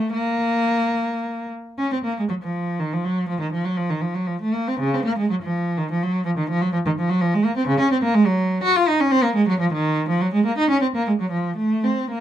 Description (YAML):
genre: classical, baroque-style suite movement for unaccompanied cello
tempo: 71-86 BPM (dotted quarters)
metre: 6/8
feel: rubato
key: Bb minor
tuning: A4 = 438 Hz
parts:
  - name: rich cello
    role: solo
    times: 0.0-12.2 s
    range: Db3 to Gb4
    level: -19 LUFS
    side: right 1 dB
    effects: none
room: little or no reverb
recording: close, detailed microphones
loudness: -19 LUFS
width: side -11 dB against mid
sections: 0.0-1.8 A section; 1.8-12.2 A section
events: none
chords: none